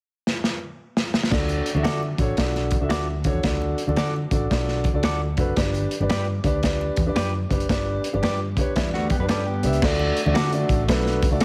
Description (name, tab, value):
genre	uptempo 1960s-style soul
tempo	113 BPM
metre	4/4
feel	swing 64% on 8ths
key	D major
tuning	A4 = 440 Hz
part	crunchy breakbeat drum kit	drums	0.3-11.4 s	crash cymbal, hi-hat, kick drum, snare drum	-27 LUFS	equal	none
part	dark concert grand piano	accompaniment	1.3-11.4 s	A3 to E5	-28 LUFS	equal	none
part	vintage muted fingered electric bass	bass	1.3-11.4 s	F#1 to D3	-28 LUFS	equal	none
part	congas	percussion	1.3-11.4 s	none	-36 LUFS	equal	none
part	semi-hollow electric guitar	stabs	1.8-11.4 s	F#4 to D5	-32 LUFS	equal	none
part	mellow electric guitar	riff	8.8-9.8 s	G3 to B4	-31 LUFS	equal	none
room	studio reverb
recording	heavily compressed radio sound, multiband compression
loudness	-23 LUFS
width	mono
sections	0.0-1.3 A section; 1.3-9.8 B section; 9.8-11.4 C section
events	drum fill 0.3-1.3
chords	0.0 N.C.; 1.3 D; 5.6 G; 9.8 D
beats	0.26 0.79 | 1.32 1.85 2.38 2.91 | 3.44 3.97 4.50 5.04 | 5.57 6.10 6.63 7.16 | 7.70 8.23 8.76 9.29 | 9.82 10.35 10.88 11.41